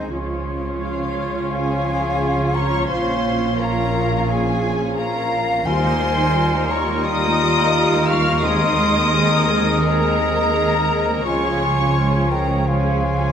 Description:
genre	cinematic, emotional film score for orchestra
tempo	86 BPM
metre	4/4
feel	rubato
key	unclear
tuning	A4 = 438 Hz
part	muted symphonic violin section	melody	0.0-13.3 s	F5 to F6	-25 LUFS	left 3 dB	none
part	dark clarinet	second line	0.0-13.3 s	F4 to Ab4	-28 LUFS	left 1 dB	none
part	mellow hollow concert flute	second line	0.0-13.3 s	Db5 to Db6	-25 LUFS	equal	none
part	muted symphonic violin section	second line	0.0-13.3 s	F4 to F5	-26 LUFS	left 3 dB	none
part	warm oboe	second line	0.0-13.3 s	Bb4 to Db5	-29 LUFS	equal	none
part	muted symphonic viola section	accompaniment	0.0-13.3 s	G3 to Bb4	-26 LUFS	right 2 dB	none
part	dark French horn section	sustained chords	0.0-13.3 s	F3 to F4	-27 LUFS	left 3 dB	none
part	muted symphonic cello section	bass	0.0-13.3 s	Bb2 to Eb3	-25 LUFS	right 2 dB	none
part	muted symphonic double bass section	bass	0.0-13.3 s	Bb1 to Eb2	-25 LUFS	right 3 dB	none
part	timpani	percussion	5.7-9.4 s	Eb3	-27 LUFS	equal	none
room	wet recital hall reverb, RT60 1.8 s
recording	none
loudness	-16 LUFS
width	side -8 dB against mid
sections	0.0-13.3 A section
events	none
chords	0.1 Db; 2.9 Bbmadd9; 5.7 Ebadd9; 8.4 Abadd9/Eb; 11.3 Db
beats	| 0.11 0.80 1.50 2.20 | 2.90 3.59 4.28 4.97 | 5.66 6.36 7.05 7.74 | 8.44 9.13 9.85 10.56 | 11.27 11.97 12.68

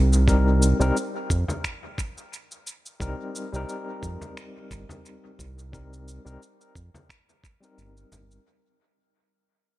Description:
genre	organic downtempo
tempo	88 BPM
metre	4/4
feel	swing 55% on 16ths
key	C minor pentatonic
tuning	A4 = 440 Hz
part	barky tine electric piano	accompaniment	0.0-8.4 s	G3 to Bb4	-29 LUFS	left 2 dB	overdrive, fast tremolo, sidechain pumping, low-pass filter, dub echo
part	round analog bass	bass	0.0-8.4 s	G1 to F2	-22 LUFS	equal	sidechain pumping
part	electronic shaker and finger snaps	drums	0.1-8.4 s	none	-35 LUFS	equal	studio reverb, dub echo
part	electronic kick drum	drums	0.3-7.6 s	none	-28 LUFS	equal	studio reverb
part	frame drum	percussion	1.5-8.3 s	none	-38 LUFS	left 1 dB	dub echo
room	little or no reverb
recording	echo-heavy mix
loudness	-22 LUFS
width	side -17 dB against mid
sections	0.0-8.5 A section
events	fade-out 0.0-8.5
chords	0.0 Cm7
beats	| 0.28 0.96 1.64 2.32 | 3.00 3.69 4.37 5.05 | 5.73 6.41 7.09 7.78

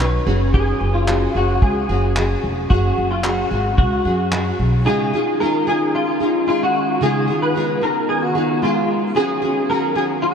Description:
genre	acoustic pop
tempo	112 BPM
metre	4/4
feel	straight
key	unclear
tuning	A4 = 435 Hz
part	clean electric guitar	melody	0.0-10.3 s	E#4 to C#5	-21 LUFS	left 1 dB	ensemble chorus, analog delay
part	nylon-string guitar	accompaniment	0.0-10.3 s	C#3 to B4	-21 LUFS	equal	double-tracked left and right
part	upright bass	bass	0.0-4.8 s	E#1 to F#2	-20 LUFS	equal	none
part	cloth-damped thuddy drum kit	drums	0.0-4.4 s	handclaps, kick drum	-22 LUFS	equal	none
part	glassy FM pad	sustained chords	5.5-10.3 s	D#3 to G#4	-25 LUFS	right 1 dB	ensemble chorus, built-in reverb
room	wet huge ambient reverb, RT60 7.1 s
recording	dreamy mix soaked in reverb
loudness	-16 LUFS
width	side -7 dB against mid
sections	0.0-4.9 A section; 4.9-10.3 B section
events	none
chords	0.3 F#sus2; 4.9 C#add9; 9.2 F#sus2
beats	0.00 | 0.54 1.08 1.62 2.16 | 2.70 3.24 3.78 4.32 | 4.86 5.40 5.93 6.47 | 7.01 7.55 8.09 8.62 | 9.16 9.70 10.23

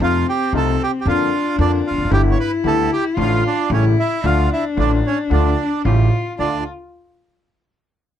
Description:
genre	tango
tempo	113 BPM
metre	4/4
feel	rubato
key	unclear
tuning	A4 = 440 Hz
part	bandoneon	melody	0.0-6.6 s	C#4 to C#5	-21 LUFS	right 5 dB	none
part	warm cello	second line	0.0-6.6 s	C4 to F4	-22 LUFS	left 5 dB	none
part	warm concert grand piano	accompaniment	0.0-6.6 s	G1 to F4	-23 LUFS	left 6 dB	none
part	bandoneon	stabs	0.0-6.6 s	A3 to G4	-31 LUFS	right 5 dB	none
part	upright bass	bass	0.0-6.6 s	E1 to F2	-19 LUFS	right 1 dB	none
room	light reverb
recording	dark, warm production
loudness	-15 LUFS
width	side -10 dB against mid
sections	0.0-6.4 A section; 6.4-8.2 B section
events	none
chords	0.0 F7; 1.1 Bb/F; 2.1 G6; 3.2 Dm/A; 3.7 A7; 4.2 Dm; 5.9 A7; 6.4 Dm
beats	| 0.01 0.53 1.06 1.59 | 2.12 2.65 3.18 3.71 | 4.24 4.78 5.31 5.85 | 6.39

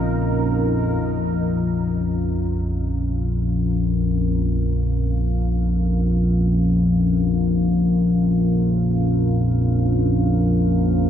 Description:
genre	dark ambient drone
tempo	free time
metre	none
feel	none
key	unclear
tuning	A4 = 440 Hz
part	deep dark ambient pad	sustained chords	0.0-11.1 s	Db4 to F5	-26 LUFS	equal	chorus, built-in reverb
part	analog drone	drone	0.0-11.1 s	Bb1 to F2	-18 LUFS	left 1 dB	chorus
part	bubbling stepped-filter texture	texture	0.0-1.1 s	Eb4 to Bb4	-32 LUFS	right 2 dB	chorus, built-in reverb
room	wet cathedral reverb, RT60 5.3 s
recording	dark, warm production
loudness	-18 LUFS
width	side -9 dB against mid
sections	0.0-1.0 A section; 1.0-11.1 B section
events	filter sweep on synth drone 0.0-1.0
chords	0.0 Bbm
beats	free time

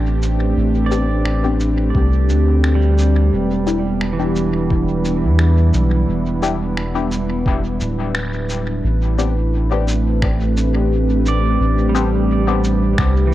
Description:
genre	ambient dub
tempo	87 BPM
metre	4/4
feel	swing 54% on 16ths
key	A minor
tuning	A4 = 440 Hz
part	warbly tape-like pad	sustained chords	0.0-13.3 s	G3 to B4	-21 LUFS	equal	chorus, built-in reverb, phaser, cassette tape
part	soft dub sub bass	bass	0.0-13.3 s	D1 to E2	-17 LUFS	equal	none
part	electronic cabasa and finger snaps	drums	0.2-13.1 s	none	-28 LUFS	equal	cassette tape, dub echo
part	pedal steel guitar	arpeggios	0.9-13.3 s	E3 to D5	-23 LUFS	right 5 dB	low-pass filter, cassette tape, analog delay
part	filtered dub chord stab	stabs	0.9-12.6 s	B3 to G4	-25 LUFS	left 7 dB	chorus, phaser, cassette tape, dub echo
part	electronic kick drum	drums	1.9-13.1 s	none	-20 LUFS	equal	cassette tape
room	light reverb, digital ambience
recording	home recording on cassette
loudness	-15 LUFS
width	side -14 dB against mid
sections	0.0-8.8 A section; 8.8-13.3 B section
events	filter sweep on pedal steel guitar 0.0-8.8; band accent 8.2-8.5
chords	0.0 Am11; 3.3 Em7; 8.8 Am11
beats	| 0.57 1.26 1.95 2.64 | 3.33 4.02 4.71 5.40 | 6.09 6.78 7.46 8.15 | 8.84 9.53 10.22 10.91 | 11.60 12.29 12.98

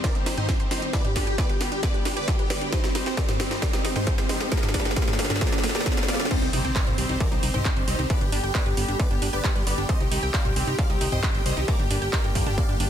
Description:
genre	uplifting trance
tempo	134 BPM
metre	4/4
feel	straight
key	C minor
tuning	A4 = 439 Hz
part	big supersaw lead	melody	0.0-12.9 s	C4 to F5	-30 LUFS	equal	sidechain pumping, ping-pong delay
part	wide unison pluck	arpeggios	0.0-12.8 s	Bb3 to G5	-34 LUFS	right 2 dB	sidechain pumping, ping-pong delay
part	electronic kick drum	drums	0.0-12.7 s	none	-25 LUFS	equal	distortion, overdrive, studio reverb
part	techno drum kit	drums	0.0-12.9 s	crash cymbal, handclaps, hi-hat, snare drum, toms	-28 LUFS	equal	overdrive, studio reverb
part	riser and impact	sound effects	2.0-8.1 s	none	-35 LUFS	equal	none
part	muted studio string section	sustained chords	0.1-12.8 s	D3 to G4	-34 LUFS	left 1 dB	sidechain pumping
part	fat analog bass	bass	6.4-12.9 s	G1 to G2	-28 LUFS	equal	tube saturation, sidechain pumping
room	light reverb, digital ambience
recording	dense, heavily limited modern master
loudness	-22 LUFS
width	side -10 dB against mid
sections	0.0-6.3 A section; 6.3-12.9 B section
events	build-up 0.0-6.3; drum fill 0.0-6.3; riser 2.0-6.3; drop 6.3-12.9; impact 6.3-8.1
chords	0.0 Cm; 0.9 G; 2.7 Cm; 4.5 Gm; 6.3 Cm; 8.1 G; 9.9 Cm; 11.7 Gm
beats	0.04 0.49 | 0.94 1.38 1.83 2.28 | 2.73 3.17 3.62 4.07 | 4.52 4.97 5.41 5.86 | 6.31 6.76 7.20 7.65 | 8.10 8.55 8.99 9.44 | 9.89 10.34 10.79 11.23 | 11.68 12.13 12.58

